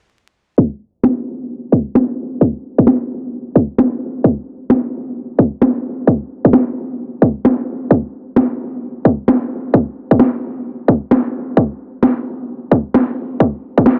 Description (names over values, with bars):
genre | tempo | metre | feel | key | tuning
UK garage, two-step garage | 131 BPM | 4/4 | swing 63% on 16ths | none | none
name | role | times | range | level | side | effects
electronic kick drum | drums | 0.6-13.8 s | none | -13 LUFS | equal | high-pass filter on kick
electronic snare drum | drums | 1.0-14.0 s | none | -18 LUFS | equal | none
room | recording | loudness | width
moderate plate reverb, RT60 2.1 s | dense, heavily limited modern master, vinyl crackle, low-pass filter | -16 LUFS | mono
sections
0.6-14.0 A section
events
filter sweep 0.6-14.0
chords
none